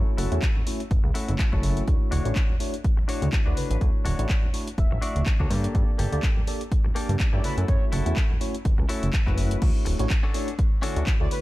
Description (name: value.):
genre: filtered disco house.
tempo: 124 BPM.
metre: 4/4.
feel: swing 56% on 16ths.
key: D major.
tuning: A4 = 439 Hz.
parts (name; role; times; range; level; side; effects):
mellow tine electric piano; accompaniment; 0.0-11.4 s; D3 to C#6; -32 LUFS; equal; phaser, vintage 12-bit sampler grit, sidechain pumping, low-pass filter.
direct-recorded clean electric guitar; riff; 0.0-11.1 s; Bb3 to D5; -36 LUFS; left 4 dB; spring reverb, sidechain pumping, low-pass filter.
fat analog bass; bass; 0.0-11.3 s; D1 to G2; -26 LUFS; equal; sidechain pumping, low-pass filter.
punchy analog drum machine; drums; 0.2-11.4 s; crash cymbal, handclaps, hi-hat; -34 LUFS; left 1 dB; sidechain pumping on hats, sidechain pumping on cymbals.
egg shaker and congas; percussion; 0.2-9.6 s; none; -34 LUFS; right 2 dB; sidechain pumping on perc, low-pass filter on perc.
electronic kick drum; drums; 0.4-11.2 s; none; -23 LUFS; equal; none.
analog synth brass; melody; 3.5-11.4 s; B4 to E5; -38 LUFS; left 1 dB; chorus, sidechain pumping, low-pass filter, dub echo.
room: little or no reverb.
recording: none.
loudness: -22 LUFS.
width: side -18 dB against mid.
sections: 0.0-9.6 A section; 9.6-11.4 B section.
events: drop 9.6-11.4.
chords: 0.0 F#m7; 1.9 Dmaj7; 5.5 Gmadd9; 7.4 F#m7; 9.6 Dmaj7.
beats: 0.43 0.91 1.39 | 1.88 2.36 2.85 3.33 | 3.81 4.30 4.78 5.26 | 5.75 6.23 6.72 7.20 | 7.68 8.17 8.65 9.13 | 9.62 10.10 10.59 11.07.